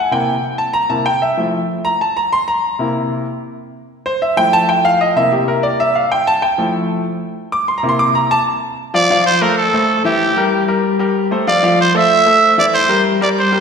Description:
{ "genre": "latin", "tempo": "190 BPM", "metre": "4/4", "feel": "straight", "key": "F major", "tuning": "A4 = 439 Hz", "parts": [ { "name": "clear grand piano", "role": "accompaniment", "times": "0.0-13.6 s", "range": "C3 to D6", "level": "-14 LUFS", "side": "left 1 dB", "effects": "none" }, { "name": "growling trumpet", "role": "melody", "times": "8.9-13.6 s", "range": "G4 to E5", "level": "-13 LUFS", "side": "right 2 dB", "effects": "none" } ], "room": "wet concert hall reverb, RT60 1.8 s", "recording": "recorded in a church or concert hall", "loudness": "-13 LUFS", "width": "side -6 dB against mid", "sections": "0.0-8.9 A section; 8.9-13.6 B section", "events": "grand piano solo 0.0-8.9", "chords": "0.1 C7; 1.4 Fmaj7; 2.6 C7; 3.9 Fmaj7; 5.2 C7; 6.4 Fmaj7; 7.7 C7; 8.9 Fmaj7; 10.2 C7 (rootless); 11.5 Fmaj7; 12.7 C7" }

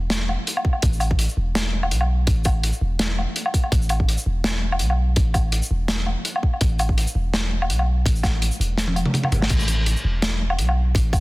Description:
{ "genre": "half-time drum and bass", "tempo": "166 BPM", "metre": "4/4", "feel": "swing 55% on 16ths, half-time", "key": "unclear", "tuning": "A4 = 439 Hz", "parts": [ { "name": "long sustained 808-style bass", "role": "bass", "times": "0.0-11.2 s", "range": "E1 to B1", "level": "-21 LUFS", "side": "equal", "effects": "tube saturation" }, { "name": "crunchy breakbeat drum kit", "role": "drums", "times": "0.1-11.2 s", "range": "crash cymbal, hi-hat, shaker, snare drum, toms, woodblock", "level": "-24 LUFS", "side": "equal", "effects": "none" }, { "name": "electronic kick drum", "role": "drums", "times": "0.6-11.2 s", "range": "none", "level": "-20 LUFS", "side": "equal", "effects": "none" } ], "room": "little or no reverb", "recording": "dense, heavily limited modern master", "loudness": "-19 LUFS", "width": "side -21 dB against mid", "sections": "0.0-9.5 A section; 9.5-11.2 A section", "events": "drop 0.0-9.5, 9.5-11.2; kick drops out 8.8-9.5; drum fill 8.8-9.5", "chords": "none" }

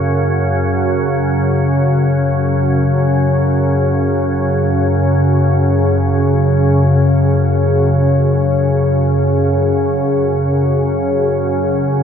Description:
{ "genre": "ambient", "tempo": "free time", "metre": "none", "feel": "none", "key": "unclear", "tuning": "A4 = 440 Hz", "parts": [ { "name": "organ-like drone", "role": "solo", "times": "0.0-12.0 s", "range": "F#2 to C#3", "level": "-12 LUFS", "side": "equal", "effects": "ensemble chorus, built-in reverb, diffuse ambient delay" } ], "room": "wet huge ambient reverb, RT60 8.1 s", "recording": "none", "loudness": "-12 LUFS", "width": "side -8 dB against mid", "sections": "0.0-4.0 A section; 4.0-12.0 B section", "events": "none", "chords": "0.0 F#5" }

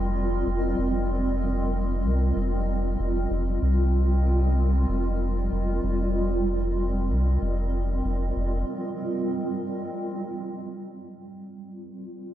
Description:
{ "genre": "ambient dub", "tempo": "95 BPM", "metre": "4/4", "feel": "swing 55% on 16ths", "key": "unclear", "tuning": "A4 = 439 Hz", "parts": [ { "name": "granular cloud pad", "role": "sustained chords", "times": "0.0-12.3 s", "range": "G3 to Eb5", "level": "-28 LUFS", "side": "right 1 dB", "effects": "built-in reverb" }, { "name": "soft dub sub bass", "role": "bass", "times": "0.0-8.6 s", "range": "F1 to C2", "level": "-24 LUFS", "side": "equal", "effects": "none" } ], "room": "light reverb", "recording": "none", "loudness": "-23 LUFS", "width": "side -12 dB against mid", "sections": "0.0-9.9 A section; 9.9-12.3 B section", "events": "filter sweep on ambient pad 9.9-12.3", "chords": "0.0 F5" }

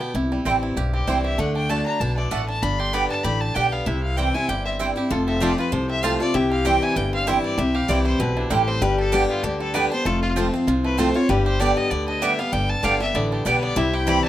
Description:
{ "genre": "bluegrass", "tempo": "194 BPM", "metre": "4/4", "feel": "swing 55% on 8ths", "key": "C major", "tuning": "A4 = 439 Hz", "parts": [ { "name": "bluegrass banjo", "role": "melody", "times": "0.0-14.3 s", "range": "D3 to G4", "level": "-31 LUFS", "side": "right 3 dB", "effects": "none" }, { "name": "clear fiddle", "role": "melody", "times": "0.0-14.3 s", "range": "D4 to C6", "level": "-27 LUFS", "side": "left 2 dB", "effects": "none" }, { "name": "picked steel-string acoustic guitar", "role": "accompaniment", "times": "0.0-14.3 s", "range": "F2 to G4", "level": "-24 LUFS", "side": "left 1 dB", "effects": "none" }, { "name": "upright bass", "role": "bass", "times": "0.1-14.2 s", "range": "F1 to D2", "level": "-25 LUFS", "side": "equal", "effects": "none" }, { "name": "mandolin", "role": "stabs", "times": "0.5-14.2 s", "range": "A3 to A5", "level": "-23 LUFS", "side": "right 5 dB", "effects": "none" }, { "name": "lap resonator guitar", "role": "second line", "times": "5.1-14.3 s", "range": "E4 to A4", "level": "-28 LUFS", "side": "left 4 dB", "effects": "none" } ], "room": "moderate small room reverb, RT60 0.6 s", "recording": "none", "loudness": "-19 LUFS", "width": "side -12 dB against mid", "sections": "0.0-5.1 A section; 5.1-14.3 B section", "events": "none", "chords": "0.1 C; 1.4 D; 2.6 G; 3.9 C; 5.1 F; 6.3 C; 8.8 G; 10.1 F; 11.3 G; 13.8 C" }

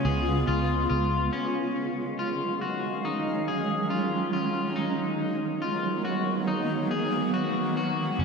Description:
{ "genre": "dream pop", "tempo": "70 BPM", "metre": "4/4", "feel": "straight", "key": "Eb minor", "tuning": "A4 = 440 Hz", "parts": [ { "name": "granular cloud pad", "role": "sustained chords", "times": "0.0-8.2 s", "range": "Db3 to F5", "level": "-28 LUFS", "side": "right 2 dB", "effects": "built-in reverb" }, { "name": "electric guitar at the edge of break-up", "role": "arpeggios", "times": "0.0-8.2 s", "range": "Db4 to Ab4", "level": "-29 LUFS", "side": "left 3 dB", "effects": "analog chorus, tape echo" }, { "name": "vintage muted picked electric bass", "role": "bass", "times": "0.1-1.3, 8.2 s", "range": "Gb1 to Db2", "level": "-27 LUFS", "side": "left 1 dB", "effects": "none" } ], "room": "wet lush hall reverb, RT60 2.6 s", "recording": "dreamy mix soaked in reverb", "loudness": "-25 LUFS", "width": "side -5 dB against mid", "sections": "0.0-1.3 A section; 1.3-8.2 B section", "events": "none", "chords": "0.0 Db7; 1.3 Ebm11; 4.8 Abm9" }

